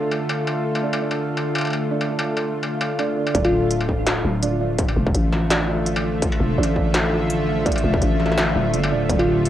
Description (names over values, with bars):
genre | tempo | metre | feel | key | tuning
half-time drum and bass | 167 BPM | 4/4 | swing 55% on 16ths, half-time | D minor | A4 = 440 Hz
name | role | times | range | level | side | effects
bowed-like drone | sustained chords | 0.0-9.5 s | D3 to E5 | -24 LUFS | equal | built-in reverb, sidechain pumping
felt-muted upright piano | arpeggios | 0.0-9.5 s | D4 to G4 | -29 LUFS | right 7 dB | tape echo
industrial drum kit | drums | 0.1-9.5 s | hi-hat, snare drum, struck metal | -25 LUFS | left 1 dB | cassette tape
growling 808-style bass | bass | 3.3-9.5 s | D1 to A1 | -22 LUFS | equal | none
electronic kick drum | drums | 3.3-9.2 s | none | -23 LUFS | equal | distortion, cassette tape
pulsing gated texture | texture | 3.3-9.5 s | F3 to F4 | -30 LUFS | equal | chorus, built-in reverb
bell-like FM electric piano | melody | 3.4-3.8, 9.2-9.5 s | F4 | -25 LUFS | left 2 dB | chorus, cassette tape, tape echo
room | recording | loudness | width
light reverb | home recording on cassette | -18 LUFS | side -12 dB against mid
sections
0.0-3.3 A section; 3.3-9.5 B section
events
drop 3.3-9.5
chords
0.0 Dm; 3.3 Dmadd9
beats
0.11 | 0.47 0.83 1.19 1.55 | 1.91 2.27 2.63 2.99 | 3.35 3.71 4.07 4.43 | 4.79 5.14 5.50 5.86 | 6.22 6.58 6.94 7.30 | 7.66 8.02 8.38 8.74 | 9.10 9.46